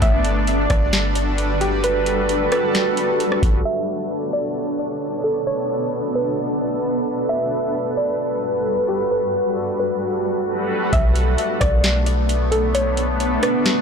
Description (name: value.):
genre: hip hop, atmospheric cloud-rap.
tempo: 132 BPM.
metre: 4/4.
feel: half-time.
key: B minor.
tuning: A4 = 439 Hz.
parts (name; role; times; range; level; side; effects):
soft round pluck; melody; 0.0-13.6 s; G4 to E5; -24 LUFS; equal; chorus, low-pass filter, ping-pong delay.
granular cloud pad; sustained chords; 0.0-13.8 s; G2 to C#5; -21 LUFS; equal; built-in reverb, sidechain pumping.
clean 808-style bass; bass; 0.0-3.6, 10.9-13.4 s; G1 to B1; -21 LUFS; equal; tube saturation.
booming analog drum machine; drums; 0.0-3.6, 10.9-13.8 s; hi-hat, kick drum, rim click, snare drum; -21 LUFS; equal; none.
room: light reverb.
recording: blown-out, overdriven recording, overdrive, low-pass filter.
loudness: -18 LUFS.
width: side -6 dB against mid.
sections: 0.0-3.7 A section; 3.7-10.9 B section; 10.9-13.8 A section.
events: filter sweep 3.7-10.9.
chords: 0.0 Gmaj7; 3.7 Bm7; 7.3 Gmaj7; 10.9 Bm7.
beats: | 0.02 0.47 0.93 1.38 | 1.84 2.29 2.75 3.20 | 3.65 4.11 4.56 5.02 | 5.47 5.93 6.38 6.84 | 7.29 7.75 8.20 8.65 | 9.11 9.56 10.02 10.47 | 10.93 11.38 11.84 12.29 | 12.75 13.20 13.65.